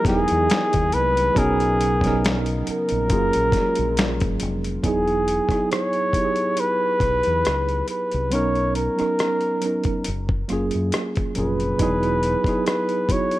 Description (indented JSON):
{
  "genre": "R&B, neo-soul",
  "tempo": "69 BPM",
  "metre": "4/4",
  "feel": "swing 53% on 16ths",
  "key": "E lydian",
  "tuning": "A4 = 440 Hz",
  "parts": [
    { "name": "breathy flugelhorn", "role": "melody", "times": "0.0-13.4 s", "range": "G#4 to C#5", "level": "-22 LUFS", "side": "equal", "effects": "none" },
    { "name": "tine electric piano", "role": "accompaniment", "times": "0.0-13.4 s", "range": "A#2 to A#4", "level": "-24 LUFS", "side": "right 2 dB", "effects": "medium stereo tremolo" },
    { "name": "hollow soft pad", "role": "sustained chords", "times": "0.0-4.8 s", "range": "C#3 to D#5", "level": "-34 LUFS", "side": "left 1 dB", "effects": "chorus" },
    { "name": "dusty soul sampler-style drum kit", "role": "drums", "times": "0.0-13.4 s", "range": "finger snaps, hi-hat, kick drum, rim click, snare drum", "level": "-25 LUFS", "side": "left 1 dB", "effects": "overdrive" },
    { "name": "deep dub fingered electric bass", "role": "bass", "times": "0.1-12.5 s", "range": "E1 to F#2", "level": "-26 LUFS", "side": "left 1 dB", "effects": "none" }
  ],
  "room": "light reverb",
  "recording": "none",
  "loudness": "-19 LUFS",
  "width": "side -16 dB against mid",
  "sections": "0.0-4.8 A section; 4.8-13.4 B section",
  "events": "none",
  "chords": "0.0 Emaj9; 1.4 Bmaj9; 3.1 F#maj9; 4.8 Emaj9; 8.3 Bmaj9; 10.1 F#maj9; 11.8 Emaj9"
}